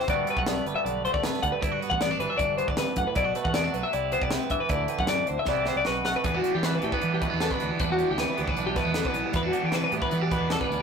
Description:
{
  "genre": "math rock and midwest emo",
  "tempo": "155 BPM",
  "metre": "4/4",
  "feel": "straight",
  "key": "E minor",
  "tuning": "A4 = 439 Hz",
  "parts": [
    { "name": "twangy electric guitar", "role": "accompaniment", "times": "0.0-10.8 s", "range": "E2 to G4", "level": "-31 LUFS", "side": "right 9 dB", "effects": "spring reverb" },
    { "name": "twelve-string electric guitar", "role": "arpeggios", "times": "0.0-10.8 s", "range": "F#4 to F#5", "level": "-27 LUFS", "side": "left 3 dB", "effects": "none" },
    { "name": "crisp fusion drum kit", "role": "drums", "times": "0.0-10.8 s", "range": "hi-hat, kick drum, snare drum", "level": "-31 LUFS", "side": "equal", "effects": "none" },
    { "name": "fingered electric bass", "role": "bass", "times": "0.1-10.8 s", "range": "G1 to E3", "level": "-32 LUFS", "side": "right 1 dB", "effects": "none" },
    { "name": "biting overdriven guitar", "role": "riff", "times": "6.2-10.8 s", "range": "E3 to E4", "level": "-31 LUFS", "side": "right 1 dB", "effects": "phaser" }
  ],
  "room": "moderate studio reverb, RT60 0.6 s",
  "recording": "rough rehearsal-room recording, tube saturation",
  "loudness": "-24 LUFS",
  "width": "side -6 dB against mid",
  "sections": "0.0-6.2 A section; 6.2-10.8 B section",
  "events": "drum fill 5.5-6.2",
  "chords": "0.1 Gmaj9; 3.2 Bm7; 3.9 Cmaj7; 4.7 D9; 5.5 Cmaj7; 5.9 B5; 6.2 Em9"
}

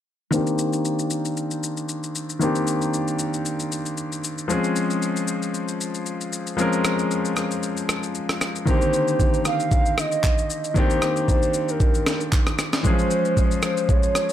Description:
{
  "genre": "amapiano",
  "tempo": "115 BPM",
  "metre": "4/4",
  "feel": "swing 55% on 16ths",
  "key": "unclear",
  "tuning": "A4 = 439 Hz",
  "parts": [
    { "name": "bright grand piano", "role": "accompaniment", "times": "0.3-14.3 s", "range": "D3 to Bb4", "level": "-23 LUFS", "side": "left 2 dB", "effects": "low-pass filter" },
    { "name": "breakbeat sampler-style drum kit", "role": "drums", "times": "0.3-14.3 s", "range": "handclaps, kick drum, rim click, shaker, snare drum", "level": "-23 LUFS", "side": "equal", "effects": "none" },
    { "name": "hollow clarinet-like synth lead", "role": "melody", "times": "8.7-14.3 s", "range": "Bb4 to F5", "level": "-24 LUFS", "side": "right 2 dB", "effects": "chorus, tape echo" }
  ],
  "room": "light reverb",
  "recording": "none",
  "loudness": "-20 LUFS",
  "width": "side -11 dB against mid",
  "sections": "0.3-8.7 A section; 8.7-14.3 B section",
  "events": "filter sweep on grand piano 0.3-8.7",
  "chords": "0.3 Cm9; 4.5 Dbmaj7; 8.7 Cm9; 12.8 Dbmaj7"
}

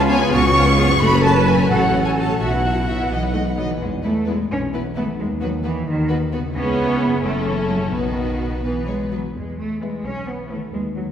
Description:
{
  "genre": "cinematic, playful, whimsical film cue",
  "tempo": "87 BPM (dotted quarters)",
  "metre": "6/8",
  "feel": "straight",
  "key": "E major",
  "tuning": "A4 = 438 Hz",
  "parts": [
    { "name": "rich chamber violin section", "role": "melody", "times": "0.0-10.7 s", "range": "G#4 to E5", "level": "-28 LUFS", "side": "left 4 dB", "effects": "none" },
    { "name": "rich chamber violin section", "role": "second line", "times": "0.0-10.7 s", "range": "E4 to C#6", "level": "-28 LUFS", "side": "left 3 dB", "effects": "none" },
    { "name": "small flute group", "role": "second line", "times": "0.0-3.5 s", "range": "F#5 to C#6", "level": "-22 LUFS", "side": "right 1 dB", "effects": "none" },
    { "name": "rich chamber viola section", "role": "accompaniment", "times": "0.0-10.7 s", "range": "A3 to A4", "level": "-26 LUFS", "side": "right 1 dB", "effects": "none" },
    { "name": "concert harp", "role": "arpeggios", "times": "0.0-11.1 s", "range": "F#2 to C#5", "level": "-27 LUFS", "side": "left 3 dB", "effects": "none" },
    { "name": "clear chamber double bass section", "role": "bass", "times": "0.0-11.1 s", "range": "F#1 to E2", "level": "-25 LUFS", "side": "right 2 dB", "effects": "none" },
    { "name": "dark tuba", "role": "bass", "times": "0.0-3.7 s", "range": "F#1 to C#2", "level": "-23 LUFS", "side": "equal", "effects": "none" },
    { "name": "rich studio cello section", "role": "bass", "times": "0.0-11.0 s", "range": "D#3 to B4", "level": "-24 LUFS", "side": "right 1 dB", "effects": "none" },
    { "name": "mellow French horn section", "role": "sustained chords", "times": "0.1-3.7 s", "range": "E#3 to E4", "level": "-27 LUFS", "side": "left 2 dB", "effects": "none" }
  ],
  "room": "wet concert hall reverb, RT60 2.2 s",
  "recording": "heard from further back in the room",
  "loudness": "-17 LUFS",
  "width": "side -9 dB against mid",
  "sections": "0.0-3.8 A section; 3.8-11.1 B section",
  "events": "none",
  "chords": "0.0 C#7; 1.0 F#m; 1.7 F#m/A; 2.4 Bsus4; 3.1 B; 3.8 E; 5.2 B/D#; 6.5 C#m; 7.2 F#m7; 7.9 B; 9.3 E"
}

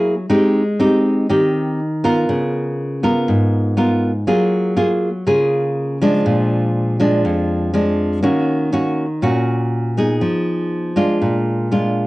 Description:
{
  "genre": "bossa nova",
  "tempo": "121 BPM",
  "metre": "4/4",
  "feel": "straight",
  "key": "Eb minor",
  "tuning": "A4 = 440 Hz",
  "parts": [
    { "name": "nylon-string guitar", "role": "solo", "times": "0.0-12.1 s", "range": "F2 to Bb4", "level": "-15 LUFS", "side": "equal", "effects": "cassette tape" }
  ],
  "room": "wet studio reverb, RT60 0.6 s",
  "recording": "home recording on cassette",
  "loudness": "-15 LUFS",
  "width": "side -19 dB against mid",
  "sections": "0.0-12.1 A section",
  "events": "none",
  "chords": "0.3 Abmaj7; 2.3 Db6; 4.3 Gbmaj9; 6.3 Bb7; 8.2 Ebm7; 10.2 Fm7b5; 11.2 Bb7"
}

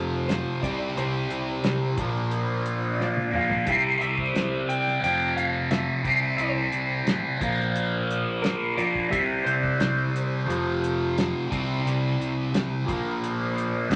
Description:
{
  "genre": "psychedelic rock",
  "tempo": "88 BPM",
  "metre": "4/4",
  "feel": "straight",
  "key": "C mixolydian",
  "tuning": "A4 = 441 Hz",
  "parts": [
    { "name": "electric slide guitar", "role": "melody", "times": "0.0-13.9 s", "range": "Bb4 to G5", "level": "-34 LUFS", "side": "equal", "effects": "none" },
    { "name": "mellow tonewheel organ", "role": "sustained chords", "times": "0.0-14.0 s", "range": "F3 to D5", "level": "-42 LUFS", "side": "equal", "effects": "none" },
    { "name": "fuzz guitar", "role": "riff", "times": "0.0-14.0 s", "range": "F2 to C4", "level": "-28 LUFS", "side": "equal", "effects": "distortion, phaser" },
    { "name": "fuzz picked electric bass", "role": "bass", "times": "0.0-14.0 s", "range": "F1 to F2", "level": "-34 LUFS", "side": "equal", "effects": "overdrive" },
    { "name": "cloth-damped thuddy drum kit", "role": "drums", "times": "0.3-14.0 s", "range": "hi-hat, kick drum, snare drum, toms", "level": "-32 LUFS", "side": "equal", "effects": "none" }
  ],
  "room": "wet club reverb, RT60 0.7 s",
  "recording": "none",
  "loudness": "-26 LUFS",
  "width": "mono",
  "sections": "0.0-14.0 A section",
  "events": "drum fill 3.0-3.7",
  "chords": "0.0 F; 0.6 C; 2.0 Bb; 3.7 C; 5.0 F; 6.1 C; 7.4 Bb; 9.1 C; 10.5 F; 11.5 C; 12.9 Bb"
}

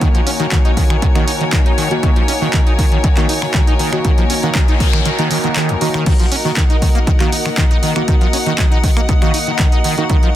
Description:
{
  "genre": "acid house",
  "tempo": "119 BPM",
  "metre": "4/4",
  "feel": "straight",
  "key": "Eb minor",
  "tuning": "A4 = 441 Hz",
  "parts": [
    { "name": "warm analog pad", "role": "sustained chords", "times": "0.0-10.4 s", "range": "Eb3 to Ab5", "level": "-24 LUFS", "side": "equal", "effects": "chorus, sidechain pumping" },
    { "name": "acid bass, saw", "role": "riff", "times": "0.0-10.3 s", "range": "Eb2 to Eb4", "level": "-20 LUFS", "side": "equal", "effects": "ensemble chorus, ping-pong delay" },
    { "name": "deep mellow chord stab", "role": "stabs", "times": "0.0-10.4 s", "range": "Bb3 to Gb4", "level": "-24 LUFS", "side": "right 3 dB", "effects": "chorus, ping-pong delay" },
    { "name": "electronic kick drum", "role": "drums", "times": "0.0-10.2 s", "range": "none", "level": "-13 LUFS", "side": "equal", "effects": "none" },
    { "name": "punchy analog drum machine", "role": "drums", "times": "0.0-10.3 s", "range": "crash cymbal, finger snaps, handclaps, hi-hat", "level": "-22 LUFS", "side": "right 1 dB", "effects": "none" },
    { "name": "warm chamber string section", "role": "texture", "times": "0.0-10.4 s", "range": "Eb4 to Gb5", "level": "-23 LUFS", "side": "left 3 dB", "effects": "sidechain pumping" },
    { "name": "noise sweep", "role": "sound effects", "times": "4.5-6.1 s", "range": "none", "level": "-25 LUFS", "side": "left 1 dB", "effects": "none" }
  ],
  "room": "light reverb",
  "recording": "dense, heavily limited modern master",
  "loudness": "-12 LUFS",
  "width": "side -12 dB against mid",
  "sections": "0.0-10.4 A section",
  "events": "noise sweep 4.5-6.1; break 5.1-6.1",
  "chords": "0.0 Ebm"
}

